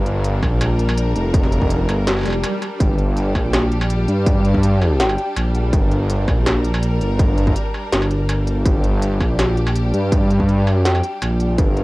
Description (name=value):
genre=half-time drum and bass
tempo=164 BPM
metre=4/4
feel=half-time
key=G minor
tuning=A4 = 440 Hz
part: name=rich studio string section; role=sustained chords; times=0.0-11.8 s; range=G3 to Bb4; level=-27 LUFS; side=equal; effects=sidechain pumping
part: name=dark detuned saw bass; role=bass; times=0.0-11.8 s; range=F1 to G2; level=-17 LUFS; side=equal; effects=none
part: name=industrial drum kit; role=drums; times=0.1-11.8 s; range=hi-hat, snare drum, struck metal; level=-23 LUFS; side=equal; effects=studio reverb, cassette tape
part: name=electronic kick drum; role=drums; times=0.4-11.7 s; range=none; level=-19 LUFS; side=equal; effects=distortion, studio reverb, cassette tape
part: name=swell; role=sound effects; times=2.2-2.8 s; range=none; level=-24 LUFS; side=left 1 dB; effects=none
part: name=soft synth bell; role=melody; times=5.0-5.3, 10.8-11.1 s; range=G5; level=-28 LUFS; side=equal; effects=chorus, cassette tape, tape echo
room=little or no reverb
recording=home recording on cassette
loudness=-15 LUFS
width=side -20 dB against mid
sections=0.0-11.8 A section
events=swell 2.2-2.8; break 2.4-2.8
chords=0.0 G5